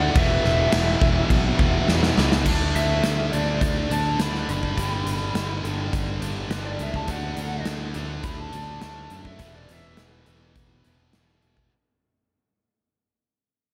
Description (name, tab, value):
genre	hard rock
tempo	104 BPM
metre	4/4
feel	straight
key	unclear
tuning	A4 = 442 Hz
part	lead guitar through a small cranked amp	melody	0.0-10.0 s	B4 to B5	-32 LUFS	equal	overdrive, analog delay
part	heavy high-gain guitar	riff	0.0-11.7 s	E2 to D4	-33 LUFS	equal	distortion, slapback echo
part	high-gain distorted guitar	riff	0.0-11.7 s	E2 to D4	-33 LUFS	equal	distortion
part	picked electric bass	bass	0.0-11.7 s	E1 to F#2	-29 LUFS	equal	none
part	huge arena drum kit	drums	0.2-11.7 s	crash cymbal, hi-hat, kick drum, snare drum	-28 LUFS	equal	none
room	moderate lush hall reverb, RT60 2.2 s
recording	big arena sound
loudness	-23 LUFS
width	mono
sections	0.0-2.5 A section; 2.5-11.7 B section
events	drum fill 1.9-2.5; fade-out 2.5-11.7; lead electric guitar solo 2.5-11.7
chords	0.2 E5; 2.5 D5; 4.8 G; 7.1 D; 9.4 E5